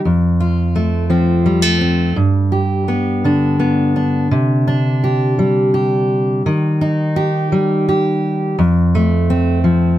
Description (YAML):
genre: folk, solo fingerstyle acoustic guitar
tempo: 56 BPM (dotted quarters)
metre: 6/8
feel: straight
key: unclear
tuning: A4 = 435 Hz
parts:
  - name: fingerpicked steel-string acoustic guitar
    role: solo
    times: 0.0-10.0 s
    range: F2 to G4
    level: -13 LUFS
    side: equal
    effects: none
room: light reverb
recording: close, detailed microphones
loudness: -13 LUFS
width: side -13 dB against mid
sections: 0.0-4.3 A section; 4.3-10.0 B section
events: none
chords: 0.0 F; 2.2 G; 4.3 Csus2; 6.5 Eb; 8.6 F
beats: | 0.04 1.10 | 2.16 3.23 | 4.32 5.39 | 6.46 7.53 | 8.59 9.65